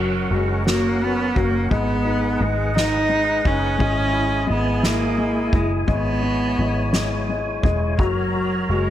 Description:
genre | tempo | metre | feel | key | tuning
six-eight pop ballad | 57 BPM (dotted quarters) | 6/8 | straight | unclear | A4 = 440 Hz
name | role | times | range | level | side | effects
warm cello | melody | 0.0-8.9 s | F#3 to D#4 | -23 LUFS | right 2 dB | none
warm upright piano | accompaniment | 0.0-8.9 s | F#3 to E4 | -25 LUFS | left 5 dB | none
percussive tonewheel organ | sustained chords | 0.0-8.9 s | C#4 to A#5 | -28 LUFS | equal | overdrive, chorus vibrato, slow rotary speaker
vintage muted fingered electric bass | bass | 0.0-8.9 s | E1 to G#1 | -24 LUFS | equal | none
soft-mallet drum kit | drums | 0.3-8.9 s | kick drum, ride cymbal, snare drum | -26 LUFS | equal | none
room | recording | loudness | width
light reverb, small room ambience | none | -18 LUFS | side -12 dB against mid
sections
0.0-8.9 A section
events
none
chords
0.0 F#; 1.7 G#m7; 3.8 E/G#; 5.9 C#m7/G#; 8.0 F#

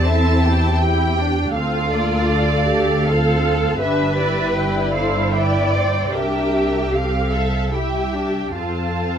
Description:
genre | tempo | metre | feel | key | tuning
classical, slow romantic movement for string orchestra | 69-81 BPM | 3/4 | rubato | unclear | A4 = 439 Hz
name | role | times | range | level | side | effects
muted symphonic violin section | melody | 0.0-9.2 s | D5 to A5 | -28 LUFS | equal | none
muted studio violin section | second line | 0.0-9.2 s | D5 to A5 | -25 LUFS | right 2 dB | none
muted symphonic viola section | accompaniment | 0.0-9.2 s | A3 to C5 | -23 LUFS | equal | none
muted symphonic cello section | bass | 0.0-9.2 s | C4 to D5 | -23 LUFS | equal | none
muted symphonic double bass section | bass | 0.0-9.2 s | G1 to F2 | -21 LUFS | equal | none
room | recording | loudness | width
light reverb | close, detailed microphones | -16 LUFS | side -8 dB against mid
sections
0.0-9.2 A section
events
none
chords
0.0 C/E; 1.6 Dm7; 3.8 G; 6.1 C9; 6.9 F/C; 7.7 Cadd9; 8.6 F

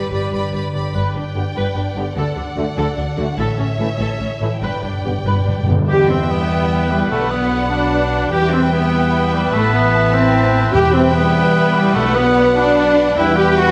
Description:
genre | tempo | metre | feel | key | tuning
cinematic, heroic adventure film score | 99 BPM (dotted quarters) | 6/8 | straight | G lydian, E minor from 5.9 s | A4 = 440 Hz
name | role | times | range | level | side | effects
rich symphonic violin section | melody | 0.0-13.7 s | B4 to A5 | -32 LUFS | equal | none
warm symphonic violin section | second line | 0.0-13.7 s | B4 to B5 | -32 LUFS | equal | none
warm symphonic viola section | accompaniment | 0.0-13.7 s | C#4 to D5 | -28 LUFS | equal | none
concert harp | arpeggios | 0.0-13.7 s | E2 to B5 | -29 LUFS | equal | none
warm symphonic cello section | bass | 0.0-13.7 s | G2 to G4 | -24 LUFS | equal | none
rich symphonic double bass section | bass | 0.1-13.7 s | G1 to E2 | -24 LUFS | equal | none
clear trombone section | sustained chords | 1.3-13.7 s | D3 to B3 | -27 LUFS | equal | none
mellow French horn section | sustained chords | 1.4-13.7 s | G3 to G4 | -22 LUFS | equal | none
timpani | percussion | 4.6-5.9, 10.7-12.5 s | E2 to B2 | -24 LUFS | equal | none
mellow cor anglais | second line | 5.9-13.7 s | G3 to G4 | -25 LUFS | equal | none
silver concert flute | second line | 5.9-13.7 s | E5 to G5 | -27 LUFS | equal | none
warm clarinet | second line | 5.9-13.7 s | B4 | -28 LUFS | equal | none
room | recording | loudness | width
wet scoring stage reverb, RT60 1.7 s | none | -16 LUFS | mono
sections
1.0-5.9 A section; 5.9-13.7 B section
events
timpani fill 4.6-5.9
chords
0.0 G; 2.2 D; 3.4 A; 4.6 G; 5.9 Em; 7.1 Bm; 8.3 Em; 9.5 Amadd9; 10.7 Em; 12.0 Bm; 13.2 Em

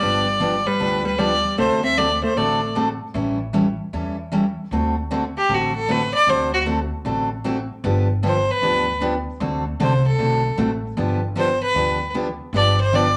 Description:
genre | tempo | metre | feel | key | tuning
country, western swing | 153 BPM | 4/4 | swing 65% on 8ths | D mixolydian | A4 = 445 Hz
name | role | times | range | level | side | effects
clear fiddle | melody | 0.0-2.8, 5.4-13.2 s | F#4 to E5 | -22 LUFS | equal | none
hollow-body jazz guitar | second line | 0.0-2.8 s | G3 to C4 | -27 LUFS | equal | none
picked steel-string acoustic guitar | accompaniment | 0.0-13.0 s | D3 to A4 | -25 LUFS | equal | none
upright bass | bass | 0.0-13.2 s | G1 to E2 | -28 LUFS | equal | none
room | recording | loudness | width
wet club reverb, RT60 0.8 s | none | -21 LUFS | mono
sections
0.0-4.7 A section; 4.7-13.2 B section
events
fiddle solo 4.7-13.2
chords
0.0 G7; 1.6 D7; 3.1 A7; 4.7 D7; 7.8 G7; 9.4 D7; 11.0 G7

